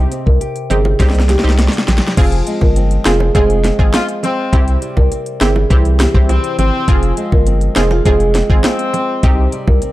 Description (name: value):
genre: dancehall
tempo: 102 BPM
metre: 4/4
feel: straight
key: F minor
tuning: A4 = 440 Hz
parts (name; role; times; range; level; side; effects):
- analog pluck; accompaniment; 0.0-9.8 s; C4 to Ab4; -22 LUFS; right 2 dB; chorus
- flamenco guitar; arpeggios; 0.0-9.9 s; C3 to G4; -22 LUFS; left 2 dB; none
- saturated sub bass; bass; 0.0-9.8 s; F1 to C2; -14 LUFS; equal; none
- island pop drum kit; drums; 0.1-9.9 s; crash cymbal, hi-hat, kick drum, rim click, snare drum; -14 LUFS; equal; none
- marimba with medium mallets; melody; 0.3-9.9 s; G4 to Bb4; -20 LUFS; right 3 dB; digital delay
- bongos; percussion; 0.7-9.8 s; none; -24 LUFS; right 4 dB; none
- clear horn section; second line; 3.9-9.5 s; C4 to F4; -20 LUFS; left 2 dB; digital delay
room: studio reverb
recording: dark, warm production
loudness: -11 LUFS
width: side -16 dB against mid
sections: 0.0-2.2 A section; 2.2-9.9 B section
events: drum fill 1.0-2.2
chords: 0.0 Cm; 2.2 Fm; 4.5 C; 6.9 Fm; 9.2 Cm